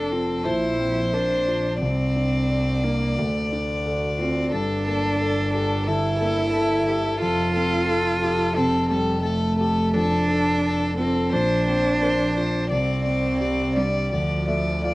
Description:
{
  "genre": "neoclassical piano and strings",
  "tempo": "88 BPM",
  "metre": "4/4",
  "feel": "rubato",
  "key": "D minor",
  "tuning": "A4 = 441 Hz",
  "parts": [
    { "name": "rich violin", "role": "melody", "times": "0.0-14.9 s", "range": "A4 to D5", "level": "-26 LUFS", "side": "left 2 dB", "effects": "cassette tape" },
    { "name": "warm cello", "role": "second line", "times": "0.0-14.9 s", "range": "F3 to F4", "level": "-24 LUFS", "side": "right 1 dB", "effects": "cassette tape" },
    { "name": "dark concert grand piano", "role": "accompaniment", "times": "0.0-14.9 s", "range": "Bb1 to F5", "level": "-28 LUFS", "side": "left 1 dB", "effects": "cassette tape" },
    { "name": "rich double bass", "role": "bass", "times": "0.0-14.9 s", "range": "F1 to D2", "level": "-27 LUFS", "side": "equal", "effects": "none" }
  ],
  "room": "moderate spring reverb, RT60 1.5 s, studio reverb",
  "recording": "home recording on cassette",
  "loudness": "-20 LUFS",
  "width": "side -19 dB against mid",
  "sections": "0.0-14.9 A section",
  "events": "none",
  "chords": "0.5 Bbsus2; 1.8 Csus2; 3.2 Dm; 4.5 Gmadd9; 7.2 Fadd9; 10.0 Dm/F; 11.3 Bbsus2; 12.7 Csus2; 14.1 Dm",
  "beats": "0.46 1.13 | 1.82 2.50 3.18 3.85 | 4.52 5.20 5.87 6.54 | 7.21 7.88 8.56 9.24 | 9.95 10.64 11.33 12.02 | 12.71 13.41 14.12 14.84"
}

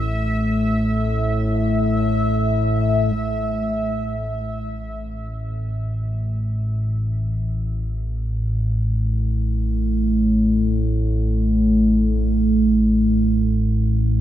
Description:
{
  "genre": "dark ambient drone",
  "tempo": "free time",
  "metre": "none",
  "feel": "none",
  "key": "unclear",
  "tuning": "A4 = 435 Hz",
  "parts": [
    { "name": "analog drone", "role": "drone", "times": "0.0-14.2 s", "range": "A1 to A2", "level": "-19 LUFS", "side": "equal", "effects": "chorus" },
    { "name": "bubbling stepped-filter texture", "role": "texture", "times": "0.0-3.2 s", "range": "E5", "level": "-26 LUFS", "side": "left 1 dB", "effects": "chorus, built-in reverb" }
  ],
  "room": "wet huge ambient reverb, RT60 7.8 s",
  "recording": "none",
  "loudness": "-18 LUFS",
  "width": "side -12 dB against mid",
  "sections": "0.0-3.1 A section; 3.1-14.2 B section",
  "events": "filter sweep on synth drone 3.1-14.2",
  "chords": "0.0 A5; 3.1 N.C.",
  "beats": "free time"
}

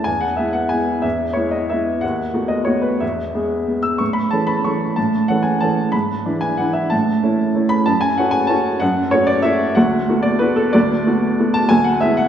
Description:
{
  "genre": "classical, piano waltz",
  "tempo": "186 BPM",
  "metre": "3/4",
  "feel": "uneven beats, rubato",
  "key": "E major",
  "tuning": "A4 = 438 Hz",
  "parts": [
    { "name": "clear upright piano", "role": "solo", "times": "0.0-12.3 s", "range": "D2 to E6", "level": "-15 LUFS", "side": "equal", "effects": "none" }
  ],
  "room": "wet concert hall reverb, RT60 2.4 s",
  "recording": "heard from further back in the room",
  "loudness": "-15 LUFS",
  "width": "side -9 dB against mid",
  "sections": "0.1-12.3 A section",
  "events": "none",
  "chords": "0.1 E; 2.0 B7/D#; 3.0 E; 4.0 A; 5.9 E7/G#; 6.9 A; 7.9 F#m; 9.8 Bm7/D; 11.7 E7/D",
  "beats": "| 0.07 0.39 0.72 | 1.04 1.37 1.70 | 2.02 2.34 2.67 | 3.02 3.35 3.68 | 4.00 4.32 4.64 | 4.97 5.28 5.61 | 5.93 6.25 6.58 | 6.92 7.23 7.55 | 7.86 8.18 8.50 | 8.81 9.12 9.44 | 9.76 10.07 10.40 | 10.74 11.06 11.39 | 11.71 12.03"
}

